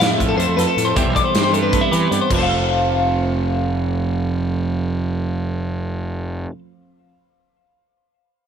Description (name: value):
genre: math rock and midwest emo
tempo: 312 BPM (eighths)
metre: 7/8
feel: straight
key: F lydian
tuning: A4 = 445 Hz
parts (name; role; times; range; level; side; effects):
- twelve-string electric guitar; accompaniment; 0.0-6.6 s; F2 to A4; -22 LUFS; right 6 dB; none
- twelve-string electric guitar; arpeggios; 0.0-6.5 s; A4 to F5; -20 LUFS; left 3 dB; wide subtle chorus, tape echo, slapback echo
- fuzz picked electric bass; bass; 0.0-6.5 s; F1 to E3; -22 LUFS; equal; overdrive
- modern studio drum kit; drums; 0.0-2.4 s; crash cymbal, hi-hat, kick drum, snare drum; -22 LUFS; left 1 dB; none
room: moderate lush hall reverb, RT60 1.6 s, small room ambience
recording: big arena sound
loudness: -17 LUFS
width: side -8 dB against mid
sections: 0.0-2.3 A section; 2.3-5.0 B section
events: none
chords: 0.0 Fmaj7; 1.0 Cmaj7; 2.3 F